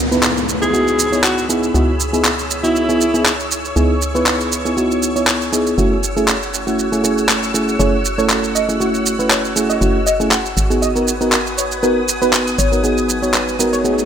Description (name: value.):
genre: deep house.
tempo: 119 BPM.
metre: 4/4.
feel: swing 54% on 16ths.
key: C# minor.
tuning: A4 = 444 Hz.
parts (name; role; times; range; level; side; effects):
soft string machine; sustained chords; 0.5-14.1 s; F#4 to E6; -25 LUFS; equal; ensemble chorus.
hollow knocking FM bass; bass; 0.0-14.1 s; F#1 to C#2; -24 LUFS; equal; tube saturation.
downlifter and riser; sound effects; 0.0-3.8, 12.6-14.1 s; none; -26 LUFS; left 1 dB; none.
mellow FM electric piano; stabs; 0.1-14.0 s; A3 to C#5; -18 LUFS; right 1 dB; chorus, low-pass filter, dub echo.
electronic shaker and handclaps; drums; 0.1-14.1 s; none; -18 LUFS; right 1 dB; none.
breathy alto saxophone; melody; 0.6-3.3 s; E4 to G#4; -19 LUFS; equal; tape echo.
soft round pluck; melody; 7.8-14.0 s; B4 to F#5; -22 LUFS; equal; lush chorus, tape echo.
room: light reverb.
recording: none.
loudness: -14 LUFS.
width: side -8 dB against mid.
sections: 0.0-14.1 A section.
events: none.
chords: 0.0 C#m7; 5.8 F#m7; 10.6 G#m7.